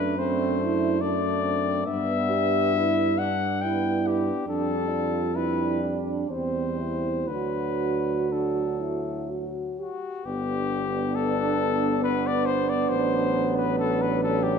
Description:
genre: classical, hymn-like piece for brass band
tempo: 58-72 BPM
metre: 3/4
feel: rubato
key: G major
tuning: A4 = 440 Hz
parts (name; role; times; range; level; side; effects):
- warm cornet; melody; 0.0-14.6 s; F#4 to G5; -28 LUFS; left 8 dB; none
- mellow French horn section; second line; 0.0-14.6 s; B3 to G4; -29 LUFS; right 9 dB; none
- warm euphonium; accompaniment; 0.0-14.6 s; F#3 to G4; -31 LUFS; left 2 dB; none
- warm trombone; accompaniment; 0.0-14.6 s; F#3 to D4; -31 LUFS; right 3 dB; none
- mellow tuba; bass; 0.0-14.6 s; G1 to G2; -31 LUFS; equal; none
room: moderate scoring stage reverb, RT60 1.6 s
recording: none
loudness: -23 LUFS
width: side -6 dB against mid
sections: 0.0-10.3 A section; 10.3-14.6 B section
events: none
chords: 0.0 D/F#; 1.9 G; 4.5 G5/F; 6.3 C/E; 7.3 D; 10.3 G; 12.9 D/A

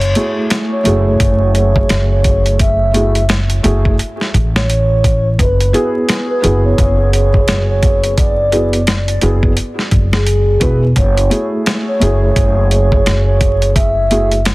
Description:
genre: trip hop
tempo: 86 BPM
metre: 4/4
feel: swing 60% on 16ths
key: F# minor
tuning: A4 = 441 Hz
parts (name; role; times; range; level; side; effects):
- pure breathy sine lead; melody; 0.0-14.4 s; G#4 to E5; -18 LUFS; right 1 dB; chorus, vintage 12-bit sampler grit, tape echo
- upright bass; bass; 0.0-14.5 s; E1 to A1; -14 LUFS; equal; none
- dusty soul sampler-style drum kit; drums; 0.0-14.5 s; hi-hat, kick drum, snare drum; -15 LUFS; equal; none
- felt-muted upright piano; accompaniment; 0.2-14.3 s; A3 to B4; -18 LUFS; right 1 dB; harmonic tremolo, tape echo
room: small room ambience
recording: dense, heavily limited modern master, vinyl crackle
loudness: -11 LUFS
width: side -21 dB against mid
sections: 0.0-14.5 A section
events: none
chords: 0.0 F#m9; 5.4 Eadd9/F#; 11.0 F#m9

